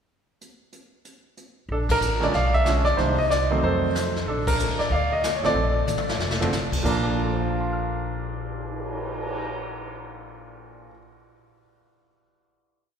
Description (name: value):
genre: jazz piano trio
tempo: 187 BPM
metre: 4/4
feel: swing 63% on 8ths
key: Bb major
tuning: A4 = 441 Hz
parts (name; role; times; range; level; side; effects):
- jazz brush drum kit; drums; 0.4-9.3 s; brushed snare drum, crash cymbal, cymbal swell, hi-hat, kick drum, ride cymbal, snare drum, toms; -30 LUFS; left 1 dB; none
- clear concert grand piano; melody; 1.7-11.1 s; Bb2 to F6; -24 LUFS; right 1 dB; none
- upright bass; bass; 1.7-10.9 s; F1 to F2; -28 LUFS; left 1 dB; none
room: wet concert hall reverb, RT60 2.5 s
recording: recorded in a church or concert hall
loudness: -22 LUFS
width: side -7 dB against mid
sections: 0.4-1.7 pickup bar; 1.7-6.8 A section; 6.8-9.4 final chord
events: band accent 1.8, 4.4; drum fill 5.9-6.5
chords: 0.4 N.C.; 1.7 Bbmaj7; 2.3 Bdim7; 3.0 Cm7; 3.6 F7b9; 4.3 Bbmaj7